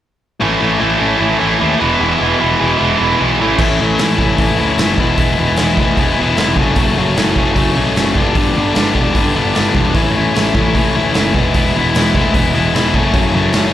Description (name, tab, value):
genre	punk rock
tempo	151 BPM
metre	4/4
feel	straight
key	A major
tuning	A4 = 440 Hz
part	distorted electric guitar	riff	0.4-13.7 s	F#2 to E4	-14 LUFS	left 4 dB	overdrive, slapback echo
part	tight distorted guitar	riff	0.4-3.6 s	E2 to A3	-16 LUFS	right 11 dB	distortion, slapback echo
part	fuzz picked electric bass	bass	0.4-13.7 s	E1 to D#2	-18 LUFS	right 1 dB	overdrive
part	raw garage drum kit	drums	3.6-13.6 s	crash cymbal, hi-hat, kick drum, snare drum	-17 LUFS	right 1 dB	none
room	little or no reverb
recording	live gig heard through the venue's PA, club reverb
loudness	-11 LUFS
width	side -12 dB against mid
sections	0.4-3.6 A section; 3.6-13.7 B section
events	none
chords	0.4 A; 1.8 E; 3.4 A; 5.0 E; 6.6 F#m; 8.2 G; 10.0 A; 11.4 E; 12.9 F#m